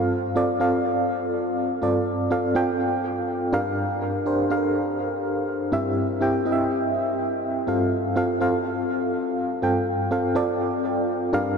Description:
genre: pop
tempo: 123 BPM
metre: 4/4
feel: straight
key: unclear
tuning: A4 = 444 Hz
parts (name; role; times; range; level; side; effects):
- FM electric piano with tremolo; solo; 0.0-11.6 s; G2 to G5; -21 LUFS; equal; diffuse ambient delay
room: wet huge ambient reverb, RT60 8.0 s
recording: dreamy mix soaked in reverb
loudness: -21 LUFS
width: side -5 dB against mid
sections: 0.0-11.6 A section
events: none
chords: 0.0 F/G; 3.5 Gm7; 5.7 C/G; 7.7 F/G

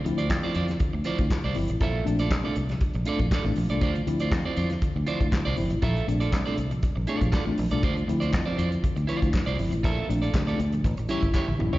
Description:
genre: disco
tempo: 120 BPM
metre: 4/4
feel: straight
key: D minor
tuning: A4 = 440 Hz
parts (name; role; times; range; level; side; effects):
- electric guitar at the edge of break-up; accompaniment; 0.0-11.8 s; E4 to E5; -32 LUFS; right 4 dB; slapback echo
- mellow tine electric piano; accompaniment; 0.1-11.7 s; Bb2 to E4; -31 LUFS; left 2 dB; medium stereo tremolo, slapback echo
- fingered electric bass; bass; 0.1-11.8 s; G1 to F2; -27 LUFS; equal; none
- warm soul drum kit; drums; 0.1-11.8 s; handclaps, hi-hat, kick drum, snare drum, toms; -27 LUFS; equal; none
- group handclap; percussion; 0.3-11.5 s; none; -41 LUFS; left 4 dB; slapback echo
room: light reverb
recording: live gig heard through the venue's PA, recital hall reverb, nothing above 7.5 kHz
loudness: -23 LUFS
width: side -17 dB against mid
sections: 0.0-11.8 A section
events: drum fill 11.3-11.8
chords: 0.0 Dm7; 1.8 Bbmaj7; 3.8 Dm7; 5.8 Bbmaj7; 7.8 Dm7; 9.8 Bbmaj7; 10.8 A7

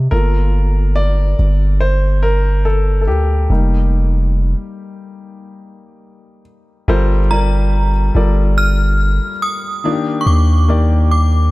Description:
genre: contemporary R&B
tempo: 71 BPM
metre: 4/4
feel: swing 58% on 16ths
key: G minor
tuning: A4 = 440 Hz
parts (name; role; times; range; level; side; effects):
- warm grand piano; accompaniment; 0.0-11.5 s; Eb3 to D5; -20 LUFS; left 2 dB; none
- long sustained 808-style bass; bass; 0.0-11.5 s; F1 to Eb2; -13 LUFS; equal; none
- synth chime; melody; 7.3-11.5 s; Bb5 to F6; -21 LUFS; equal; ensemble chorus, tremolo, digital delay
room: little or no reverb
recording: none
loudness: -12 LUFS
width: side -20 dB against mid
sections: 0.0-6.9 A section; 6.9-11.5 B section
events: grand piano solo 0.0-6.9; stop 5.2-6.9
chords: 0.1 Gm9; 3.5 F9sus4; 6.9 Gm11; 9.8 Ebmaj7

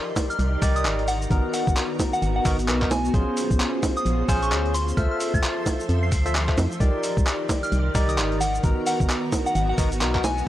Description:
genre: UK garage, two-step garage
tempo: 131 BPM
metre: 4/4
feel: swing 61% on 16ths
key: unclear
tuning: A4 = 439 Hz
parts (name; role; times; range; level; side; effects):
- soft string machine; sustained chords; 0.0-10.4 s; Cb4 to E5; -35 LUFS; equal; ensemble chorus, sidechain pumping
- barky tine electric piano; stabs; 0.0-10.2 s; Cb4 to E5; -28 LUFS; equal; lush chorus
- granular cloud pad; texture; 0.0-10.5 s; Eb3 to C6; -32 LUFS; equal; built-in reverb, sidechain pumping
- boom bap sampler-style drum kit; drums; 0.2-10.4 s; bongos, cabasa, finger snaps, handclaps, hi-hat; -28 LUFS; right 1 dB; overdrive, small room ambience
- electronic kick drum; drums; 0.2-10.2 s; none; -24 LUFS; equal; overdrive, small room ambience
- soft synth bell; melody; 0.3-10.5 s; Gb5 to C7; -29 LUFS; equal; chorus
- organ-like FM bass; bass; 0.4-10.4 s; Ab1 to F2; -24 LUFS; equal; none
room: digital ambience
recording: dry, gritty hardware recording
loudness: -20 LUFS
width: side -13 dB against mid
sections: 0.0-10.5 A section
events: none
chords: 0.0 Cm9; 1.1 Abm9; 3.1 Bbm9; 4.7 Dm9; 6.8 Cm9; 8.4 Abm9

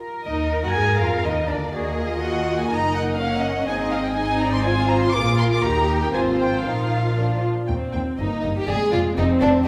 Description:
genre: quick classical-period movement for string orchestra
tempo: 122 BPM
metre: 2/4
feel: straight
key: Eb minor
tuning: A4 = 440 Hz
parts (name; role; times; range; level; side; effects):
- warm symphonic cello section; bass; 0.0-9.5 s; Eb2 to Bb4; -30 LUFS; equal; none
- dark chamber violin section; melody; 0.3-9.7 s; D5 to D6; -28 LUFS; equal; none
- warm chamber violin section; second line; 0.3-9.5 s; D4 to Gb5; -28 LUFS; equal; none
- warm chamber viola section; accompaniment; 0.3-9.7 s; F3 to Ab4; -28 LUFS; equal; none
- dark chamber double bass section; bass; 0.3-9.5 s; F1 to Ab2; -27 LUFS; equal; none
room: wet recital hall reverb, RT60 1.7 s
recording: recorded in a church or concert hall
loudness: -22 LUFS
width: mono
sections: 0.0-7.7 A section; 7.7-9.7 B section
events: none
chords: 0.0 Ebm/Bb; 0.8 Bb; 1.7 Ebm; 2.7 Ebm/Gb; 3.7 Ab; 4.7 Fm/Ab; 5.1 Bb7; 5.6 Eb; 6.1 Fm/Ab; 6.7 Bbsus4; 7.2 Bb; 7.7 N.C.; 8.2 Eb/G; 8.7 Ddim/F

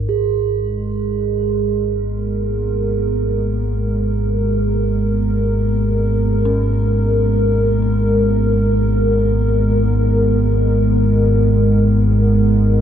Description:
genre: dark ambient drone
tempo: free time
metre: none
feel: none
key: unclear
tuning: A4 = 437 Hz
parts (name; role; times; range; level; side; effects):
- dark detuned synth bell; arpeggios; 0.0-0.1, 6.5-12.8 s; Db4; -34 LUFS; left 5 dB; none
- deep rumbling drone; drone; 0.0-12.8 s; Ab1 to Ab2; -17 LUFS; equal; built-in reverb, wide subtle chorus
- bronze singing bowl; texture; 0.0-12.8 s; Ab4 to Bb4; -25 LUFS; right 10 dB; none
- dark analog pad; sustained chords; 0.6-12.8 s; Ab3 to Bb4; -19 LUFS; equal; chorus
room: moderate huge ambient reverb, RT60 8.0 s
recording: dark, warm production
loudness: -14 LUFS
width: side -9 dB against mid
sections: 0.1-12.8 A section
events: none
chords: 0.1 Abmadd9

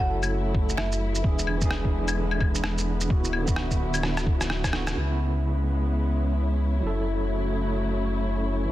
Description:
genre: future garage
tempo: 129 BPM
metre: 4/4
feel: swing 61% on 16ths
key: F# minor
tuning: A4 = 439 Hz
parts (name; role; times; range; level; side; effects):
- folk marimba with hard mallets; melody; 0.0-1.2 s; E5 to F#5; -34 LUFS; right 1 dB; dub echo
- overdriven tine electric piano; accompaniment; 0.0-8.7 s; C#3 to A4; -31 LUFS; right 3 dB; fast tremolo, vintage 12-bit sampler grit, sidechain pumping, dub echo
- muted studio string section; sustained chords; 0.0-8.7 s; C#3 to E4; -31 LUFS; left 2 dB; sidechain pumping
- warm sub bass; bass; 0.0-8.7 s; D1 to C#2; -27 LUFS; equal; sidechain pumping
- electronic shaker, claves and rim click; drums; 0.2-4.9 s; none; -30 LUFS; left 1 dB; small room ambience, soft clipping on snare
- electronic kick drum; drums; 0.5-4.7 s; none; -25 LUFS; equal; small room ambience
- wind-like tuned noise texture; texture; 5.8-8.7 s; C#4 to C#5; -36 LUFS; left 2 dB; built-in reverb
room: light reverb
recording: dense, heavily limited modern master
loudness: -23 LUFS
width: side -14 dB against mid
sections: 0.0-5.0 A section; 5.0-8.7 B section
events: drum fill 4.0-5.0; band accent 4.8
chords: 0.0 F#m7; 1.2 E7; 3.1 D69; 5.0 C#m7; 6.8 F#m7

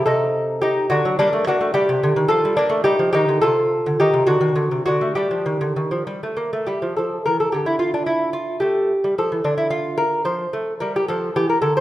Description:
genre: classical, baroque-style dance for lute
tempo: 72 BPM (dotted quarters)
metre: 6/8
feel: rubato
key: G minor, D minor from 6.9 s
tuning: A4 = 440 Hz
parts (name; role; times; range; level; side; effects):
- lute; solo; 0.0-11.8 s; C3 to C5; -17 LUFS; equal; none
room: wet recital hall reverb, RT60 1.3 s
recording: none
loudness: -17 LUFS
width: side -14 dB against mid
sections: 0.0-6.9 A section; 6.9-11.8 A section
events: none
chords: 0.1 Adim/C; 0.9 D; 1.7 Gm; 3.4 Cm; 4.2 D7; 5.1 G5; 6.9 Dm; 8.6 A5; 9.4 N.C.; 10.3 F

